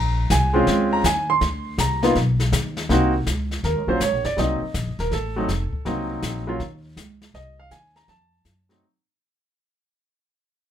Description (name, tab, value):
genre	jazz piano trio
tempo	162 BPM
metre	4/4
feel	swing 66% on 8ths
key	unclear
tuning	A4 = 441 Hz
part	warm baby grand piano	melody	0.0-8.8 s	Gb3 to C6	-22 LUFS	right 1 dB	none
part	upright bass	bass	0.0-8.8 s	Eb1 to Gb2	-24 LUFS	equal	none
part	jazz brush drum kit	drums	0.3-9.1 s	brushed snare drum, hi-hat, kick drum, snare drum	-29 LUFS	left 3 dB	none
room	light reverb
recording	minimal, uncompressed stereo recording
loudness	-19 LUFS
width	side -10 dB against mid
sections	0.0-2.9 A section; 2.9-8.8 B section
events	fade-out 2.9-8.8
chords	0.0 Bbm7; 1.4 C7sus2; 2.2 B; 2.9 Cm7b5; 3.6 Ebm7; 4.4 Cm7b5; 5.1 F; 5.9 Cm7b5; 6.6 Dbsus2; 7.3 Cm; 8.1 F(b9)